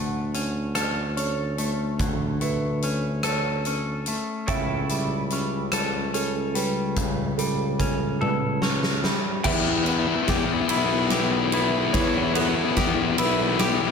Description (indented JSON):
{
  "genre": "post-rock",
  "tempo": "48 BPM (dotted quarters)",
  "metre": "6/8",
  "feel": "straight",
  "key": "E dorian",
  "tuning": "A4 = 439 Hz",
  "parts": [
    { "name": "clean electric guitar", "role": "arpeggios", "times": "0.0-13.9 s", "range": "C#3 to A4", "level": "-28 LUFS", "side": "left 2 dB", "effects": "tape echo, slapback echo" },
    { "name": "felt-muted upright piano", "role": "arpeggios", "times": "0.0-13.9 s", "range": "A4 to F#5", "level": "-33 LUFS", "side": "right 6 dB", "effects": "tape echo" },
    { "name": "warm tuba", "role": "bass", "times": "0.0-13.9 s", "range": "B1 to E2", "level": "-29 LUFS", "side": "equal", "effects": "none" },
    { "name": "huge arena drum kit", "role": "drums", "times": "0.3-13.8 s", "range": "crash cymbal, hi-hat, kick drum, ride cymbal, rim click, snare drum, toms", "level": "-27 LUFS", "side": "right 1 dB", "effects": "none" },
    { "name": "pedal steel guitar", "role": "sustained chords", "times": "4.5-13.9 s", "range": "E4 to G5", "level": "-34 LUFS", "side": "right 3 dB", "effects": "wide subtle chorus" },
    { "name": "thick fuzz guitar", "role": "riff", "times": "9.5-13.9 s", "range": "B3 to E4", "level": "-24 LUFS", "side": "left 9 dB", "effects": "distortion, slapback echo" }
  ],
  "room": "moderate lush hall reverb, RT60 2.8 s",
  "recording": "big arena sound",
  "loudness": "-22 LUFS",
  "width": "side -6 dB against mid",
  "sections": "0.0-9.5 A section; 9.5-13.9 B section",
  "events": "drum fill 8.2-9.5, 9.5-13.9; build-up 9.5-13.9",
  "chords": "0.0 Dmaj7(no3); 4.5 A7/C#; 9.5 Em",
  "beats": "0.75 | 1.99 3.24 | 4.48 5.73 | 6.97 8.22 | 9.46 10.71 | 11.95 13.19"
}